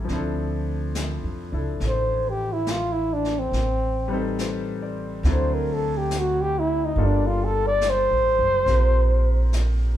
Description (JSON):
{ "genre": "jazz ballad", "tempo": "70 BPM", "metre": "4/4", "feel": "swing 66% on 8ths", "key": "D minor", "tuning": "A4 = 440 Hz", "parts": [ { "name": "clear concert grand piano", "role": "accompaniment", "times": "0.0-10.0 s", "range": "F3 to D5", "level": "-30 LUFS", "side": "left 3 dB", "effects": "none" }, { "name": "upright bass", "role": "bass", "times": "0.0-10.0 s", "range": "F#1 to F2", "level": "-24 LUFS", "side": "equal", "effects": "none" }, { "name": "jazz brush drum kit", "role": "drums", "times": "0.1-10.0 s", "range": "brushed snare drum, hi-hat, snare drum", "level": "-35 LUFS", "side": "left 2 dB", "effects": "none" }, { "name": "breathy flugelhorn", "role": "melody", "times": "1.9-9.6 s", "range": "C4 to D5", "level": "-22 LUFS", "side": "equal", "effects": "none" } ], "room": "moderate large studio reverb, RT60 1.1 s", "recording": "band playing live in one room", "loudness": "-20 LUFS", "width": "side -12 dB against mid", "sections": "0.1-10.0 A section", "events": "flugelhorn solo 0.1-10.0", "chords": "0.1 Dm7; 3.5 Am7b5; 5.2 D7; 7.0 Gm9" }